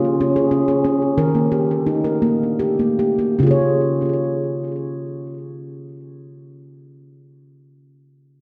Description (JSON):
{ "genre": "world meditative", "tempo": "48-63 BPM (dotted quarters)", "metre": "6/8", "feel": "straight", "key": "Db lydian", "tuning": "A4 = 440 Hz", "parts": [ { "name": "handpan", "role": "arpeggios", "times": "0.0-7.1 s", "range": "Db3 to Db5", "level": "-20 LUFS", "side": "equal", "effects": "delay" } ], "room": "wet scoring stage reverb, RT60 1.6 s, small room reverb", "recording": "dark, warm production", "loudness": "-19 LUFS", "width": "mono", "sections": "0.0-3.4 A section; 3.4-8.4 B section", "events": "slowing down 0.0-3.4", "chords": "0.0 Db; 1.2 Eb; 3.4 Db", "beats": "0.19 | 1.17 2.23 | 3.40 4.64 | 5.88" }